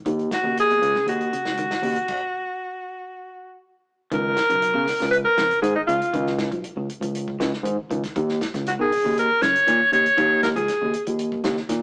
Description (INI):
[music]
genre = afrobeat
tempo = 119 BPM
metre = 4/4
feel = straight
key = Db mixolydian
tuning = A4 = 439 Hz
[part]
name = clean electric guitar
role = arpeggios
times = 0.1-11.8 s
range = Cb3 to F3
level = -35 LUFS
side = equal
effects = none
[part]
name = barky tine electric piano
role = bass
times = 0.1-11.8 s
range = Cb2 to Eb3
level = -28 LUFS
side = equal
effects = none
[part]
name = warm soul drum kit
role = drums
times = 0.1-11.8 s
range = crash cymbal, hi-hat, kick drum, snare drum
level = -34 LUFS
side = equal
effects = none
[part]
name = bright alto saxophone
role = melody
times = 0.3-11.0 s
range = Eb4 to Db5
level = -22 LUFS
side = equal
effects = none
[sound]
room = moderate stone room reverb, RT60 1.3 s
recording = rough rehearsal-room recording, tube saturation, small speaker sound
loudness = -22 LUFS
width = mono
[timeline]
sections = 0.0-4.1 A section; 4.1-11.8 B section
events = stop 2.1-4.1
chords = 0.1 Ebm7; 4.1 Db7sus2; 8.2 Eb7(no3)